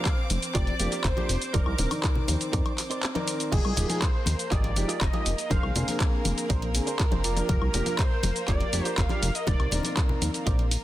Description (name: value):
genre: nu-disco, nu disco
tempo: 121 BPM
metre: 4/4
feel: straight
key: unclear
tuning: A4 = 440 Hz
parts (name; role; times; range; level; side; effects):
- wide unison lead; melody; 0.0-9.9 s; Ab4 to F5; -35 LUFS; equal; lush chorus, analog delay
- warm baby grand piano; accompaniment; 0.0-10.7 s; D3 to D5; -34 LUFS; equal; sidechain pumping, tape echo
- warm studio violin section; sustained chords; 0.0-10.8 s; Bb3 to D6; -36 LUFS; equal; sidechain pumping
- direct-recorded clean electric guitar; riff; 0.0-10.7 s; D4 to Eb5; -37 LUFS; right 4 dB; analog chorus
- electronic kick drum; drums; 0.1-10.6 s; none; -27 LUFS; equal; none
- pop drum kit; drums; 0.1-10.8 s; cabasa, crash cymbal, handclaps, hi-hat, woodblock; -31 LUFS; equal; none
- chorused synth bass; bass; 0.3-10.8 s; Eb1 to F2; -28 LUFS; equal; none
- congas; percussion; 0.3-10.7 s; none; -36 LUFS; left 4 dB; none
room: digital ambience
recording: dense, heavily limited modern master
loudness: -24 LUFS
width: side -14 dB against mid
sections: 0.0-10.8 A section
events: kick drops out 3.0-3.5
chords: 0.0 Gm7/F; 1.5 Cm9; 3.5 Fm9; 5.5 Bb9/F; 7.2 Gm7/F; 9.5 Cm9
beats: 0.05 0.55 1.04 | 1.54 2.04 2.53 3.03 | 3.52 4.02 4.52 5.01 | 5.51 6.00 6.50 7.00 | 7.49 7.99 8.48 8.98 | 9.47 9.97 10.47